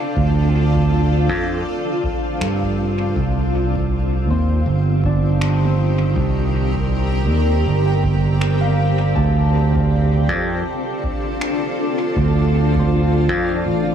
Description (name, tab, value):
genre	ambient dub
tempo	80 BPM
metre	4/4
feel	swing 58% on 16ths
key	unclear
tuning	A4 = 440 Hz
part	granular cloud pad	sustained chords	0.0-13.9 s	Eb3 to D5	-22 LUFS	equal	built-in reverb
part	concert harp	arpeggios	0.0-13.9 s	C4 to A5	-29 LUFS	left 5 dB	dub echo
part	overdriven fingered electric bass	bass	0.2-13.9 s	G1 to G2	-17 LUFS	right 2 dB	none
part	electronic kick drum	drums	0.2-13.5 s	none	-25 LUFS	equal	overdrive
part	electronic finger snaps	drums	2.4-11.6 s	none	-33 LUFS	equal	dub echo
room	light reverb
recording	none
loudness	-16 LUFS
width	side -9 dB against mid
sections	0.0-13.9 A section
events	none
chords	0.0 Dm7; 3.2 Cm9; 9.2 Dm7